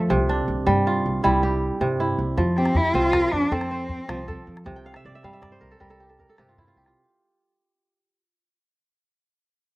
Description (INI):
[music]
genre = west african traditional, West African string and xylophone music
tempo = 105 BPM (dotted quarters)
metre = 12/8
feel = straight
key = unclear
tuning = A4 = 441 Hz
[part]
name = kora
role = arpeggios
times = 0.0-8.4 s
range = C3 to G5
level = -23 LUFS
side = right 1 dB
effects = none
[part]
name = upright bass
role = bass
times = 0.0-6.9 s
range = C2 to G2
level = -26 LUFS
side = equal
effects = none
[part]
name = calabash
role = percussion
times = 2.4-6.9 s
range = none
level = -29 LUFS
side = equal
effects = none
[part]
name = warm cello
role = melody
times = 2.6-4.5 s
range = C4 to F4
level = -23 LUFS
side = equal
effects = none
[sound]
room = little or no reverb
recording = recorded outdoors, with no room sound, lossy compression artefacts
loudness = -20 LUFS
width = side -20 dB against mid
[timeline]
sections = 0.0-6.9 A section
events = fade-out 0.0-6.9; kora fill 4.8-6.9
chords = 0.1 C; 2.4 F; 4.7 C5